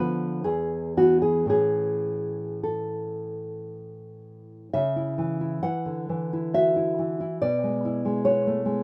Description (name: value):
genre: romantic piece for solo classical guitar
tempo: 52-72 BPM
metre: 3/4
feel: rubato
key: A major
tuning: A4 = 440 Hz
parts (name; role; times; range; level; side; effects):
- nylon-string guitar; solo; 0.0-8.8 s; E2 to F#5; -26 LUFS; equal; none
room: small room ambience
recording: rough home demo mix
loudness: -26 LUFS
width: mono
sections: 0.0-4.8 A section; 4.8-8.8 B section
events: none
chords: 0.5 E; 1.5 A; 4.8 C#m; 7.4 E7/B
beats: 0.46 | 1.53 2.64 3.72 | 4.75 5.65 6.55 | 7.43 8.27